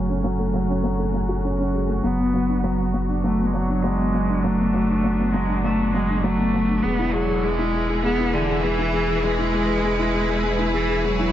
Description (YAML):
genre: electronica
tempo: 100 BPM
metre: 4/4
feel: straight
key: unclear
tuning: A4 = 441 Hz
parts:
  - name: clear studio string section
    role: sustained chords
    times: 0.0-11.3 s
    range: E3 to B4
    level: -29 LUFS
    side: equal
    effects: none
  - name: felt-muted upright piano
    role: riff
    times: 0.0-11.3 s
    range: F#3 to G#4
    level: -23 LUFS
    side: left 1 dB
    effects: digital delay
  - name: round analog bass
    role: bass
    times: 0.0-11.3 s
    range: E1 to F#1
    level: -26 LUFS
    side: equal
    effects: none
  - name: bright cello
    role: melody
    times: 2.0-11.3 s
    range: D3 to B3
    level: -24 LUFS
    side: equal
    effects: none
room: moderate echo chamber reverb, RT60 1.8 s, studio reverb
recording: low-pass filter, nothing above 7.9 kHz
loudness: -19 LUFS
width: side -11 dB against mid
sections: 0.0-11.3 A section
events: filter sweep 0.0-11.3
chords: 0.0 F#madd9; 2.0 Bm7/F#; 6.8 E